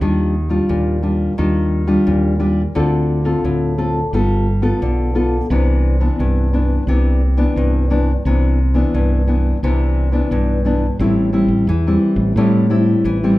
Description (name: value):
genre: samba and choro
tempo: 87 BPM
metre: 4/4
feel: straight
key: C major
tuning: A4 = 440 Hz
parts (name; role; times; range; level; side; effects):
- nylon-string guitar; accompaniment; 0.0-13.4 s; G2 to A4; -17 LUFS; left 1 dB; none
- fingered electric bass; bass; 0.0-13.4 s; G1 to A2; -17 LUFS; equal; none
room: moderate large studio reverb, RT60 0.9 s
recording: minimal, uncompressed stereo recording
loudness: -14 LUFS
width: side -17 dB against mid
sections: 0.0-11.0 A section; 11.0-13.4 B section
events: none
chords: 0.0 Ebmaj9; 2.8 Dm7; 4.1 G9; 5.5 Cmaj9; 11.0 Am7